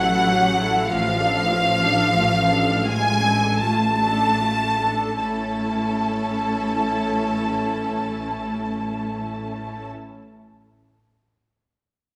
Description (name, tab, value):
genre	classical, slow romantic movement for string orchestra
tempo	36-52 BPM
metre	3/4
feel	rubato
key	A major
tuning	A4 = 441 Hz
part	rich symphonic violin section	melody	0.0-9.9 s	F5 to A5	-26 LUFS	equal	none
part	warm symphonic violin section	second line	0.0-9.9 s	A4 to A5	-28 LUFS	equal	none
part	dark symphonic viola section	accompaniment	0.0-9.9 s	A3 to A4	-31 LUFS	equal	none
part	dark symphonic cello section	bass	0.0-9.9 s	F3 to A3	-28 LUFS	equal	none
part	warm symphonic double bass section	bass	0.0-9.9 s	A1	-31 LUFS	equal	none
room	wet scoring stage reverb, RT60 1.7 s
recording	none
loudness	-21 LUFS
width	mono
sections	0.0-5.2 A section; 5.2-9.7 B section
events	slowing down 0.0-5.2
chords	0.0 A7; 0.9 Dm/A; 5.2 A